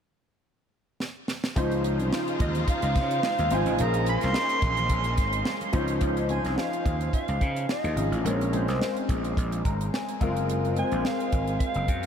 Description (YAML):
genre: polished 1980s jazz-funk pop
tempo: 108 BPM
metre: 4/4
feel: swing 54% on 16ths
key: Db major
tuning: A4 = 436 Hz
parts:
  - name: tight funk drum kit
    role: drums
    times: 1.0-12.1 s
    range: hi-hat, kick drum, snare drum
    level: -30 LUFS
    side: equal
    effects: none
  - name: warm grand piano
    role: accompaniment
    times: 1.6-12.1 s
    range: F3 to Bb5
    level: -29 LUFS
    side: left 1 dB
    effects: ensemble chorus
  - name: clear studio string section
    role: sustained chords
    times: 1.6-6.0 s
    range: Db3 to C5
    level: -35 LUFS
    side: left 2 dB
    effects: none
  - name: gritty slap bass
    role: bass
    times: 1.6-12.1 s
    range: Gb1 to Db3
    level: -28 LUFS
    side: equal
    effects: overdrive
  - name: congas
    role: percussion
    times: 1.6-5.7 s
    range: none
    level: -42 LUFS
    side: right 3 dB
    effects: none
  - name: breathy soprano saxophone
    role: melody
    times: 2.4-12.1 s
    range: Db5 to C6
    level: -30 LUFS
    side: right 2 dB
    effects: ping-pong delay
room: moderate huge ambient reverb, RT60 9.1 s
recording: dreamy mix soaked in reverb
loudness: -24 LUFS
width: side -8 dB against mid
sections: 0.0-1.6 A section; 1.6-6.0 B section; 6.0-12.1 C section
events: drum fill 1.0-1.6; grand piano fill 9.4-10.5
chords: 0.0 N.C.; 1.6 Dbmaj9; 3.8 Bbm9; 5.7 Dbmaj9; 8.3 Bbm9; 10.2 Gbmaj9#11